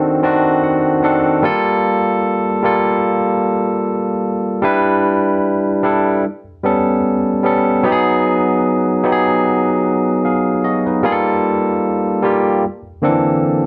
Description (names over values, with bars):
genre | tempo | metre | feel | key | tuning
R&B | 75 BPM | 4/4 | swing 56% on 16ths | unclear | A4 = 441 Hz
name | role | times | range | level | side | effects
barky tine electric piano | solo | 0.0-13.7 s | D3 to A5 | -16 LUFS | equal | none
room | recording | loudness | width
moderate studio reverb, RT60 0.7 s | dark, warm production | -16 LUFS | mono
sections
0.0-13.7 A section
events
tine electric piano fill 0.0-1.4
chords
0.0 D7b9; 1.4 Gm9; 4.6 Em7; 6.2 A9; 7.8 B6; 11.0 Gm9; 12.6 C13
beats
0.63 | 1.43 2.23 3.03 3.83 | 4.63 5.43 6.23 7.03 | 7.83 8.63 9.43 10.23 | 11.03 11.83 12.63 13.43